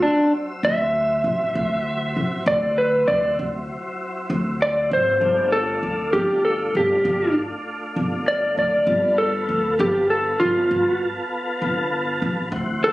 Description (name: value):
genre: slow blues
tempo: 66 BPM (dotted quarters)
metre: 12/8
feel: straight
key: unclear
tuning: A4 = 442 Hz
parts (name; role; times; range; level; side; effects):
- electric slide guitar; melody; 0.0-12.9 s; D4 to E5; -18 LUFS; equal; none
- tonewheel organ; sustained chords; 0.0-12.9 s; E3 to E5; -29 LUFS; equal; chorus vibrato, slow rotary speaker
- upright bass; bass; 0.6-12.9 s; G1 to D2; -27 LUFS; equal; none
room: light reverb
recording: recorded on a phone in the room, club reverb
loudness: -19 LUFS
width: side -18 dB against mid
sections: 0.0-12.9 A section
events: none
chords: 0.0 D9; 5.2 G9